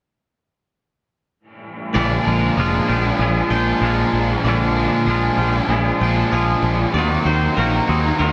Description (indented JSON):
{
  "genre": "rock",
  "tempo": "96 BPM",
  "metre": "4/4",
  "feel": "straight",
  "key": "Bb mixolydian",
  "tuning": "A4 = 436 Hz",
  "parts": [
    { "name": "twangy electric guitar", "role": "arpeggios", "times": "1.9-8.3 s", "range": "Ab4 to G5", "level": "-28 LUFS", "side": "equal", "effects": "lush chorus, digital delay" },
    { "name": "crunchy overdriven guitar", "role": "riff", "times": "1.9-8.3 s", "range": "Bb2 to Ab4", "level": "-25 LUFS", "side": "equal", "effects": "ensemble chorus" },
    { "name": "twangy electric guitar", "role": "riff", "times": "1.9-8.3 s", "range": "Bb2 to Gb4", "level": "-22 LUFS", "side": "equal", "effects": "reverse reverb" },
    { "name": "fuzz picked electric bass", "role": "bass", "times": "2.0-8.3 s", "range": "F1 to Eb2", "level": "-23 LUFS", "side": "equal", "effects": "overdrive" }
  ],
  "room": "moderate studio reverb, RT60 0.5 s",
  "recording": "dense, heavily limited modern master",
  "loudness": "-18 LUFS",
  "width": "mono",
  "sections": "2.0-8.3 A section",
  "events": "none",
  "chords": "2.0 Bb7; 6.9 Ebm6"
}